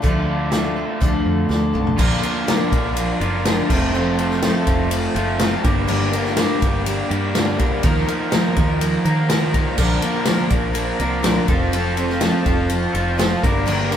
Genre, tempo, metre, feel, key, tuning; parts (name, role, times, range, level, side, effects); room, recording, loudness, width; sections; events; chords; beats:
folk rock and heartland rock; 123 BPM; 4/4; straight; A4 = 440 Hz
picked twelve-string acoustic guitar; accompaniment; 0.0-14.0 s; G2 to Bb4; -23 LUFS; left 1 dB
raw garage guitar; riff; 0.0-14.0 s; F2 to Bb4; -22 LUFS; right 1 dB; overdrive
fingered electric bass; bass; 0.0-14.0 s; F1 to Eb3; -24 LUFS; equal
natural country drum kit; drums; 0.0-14.0 s; crash cymbal, hi-hat, kick drum, ride cymbal, snare drum, toms; -21 LUFS; equal
moderate studio reverb, RT60 0.9 s; band playing live in one room; -16 LUFS; side -9 dB against mid
0.0-2.0 A section; 2.0-14.0 B section
drum fill 1.5-2.0
0.0 Dm; 2.0 Bb; 3.7 F; 5.6 Gm; 7.8 Ebsus2; 9.8 Bb; 11.5 F; 13.4 Gm
| 0.04 0.53 1.01 1.50 | 1.99 2.48 2.96 3.45 | 3.94 4.42 4.91 5.40 | 5.88 6.37 6.86 7.34 | 7.83 8.32 8.81 9.29 | 9.78 10.27 10.76 11.24 | 11.73 12.22 12.71 13.19 | 13.68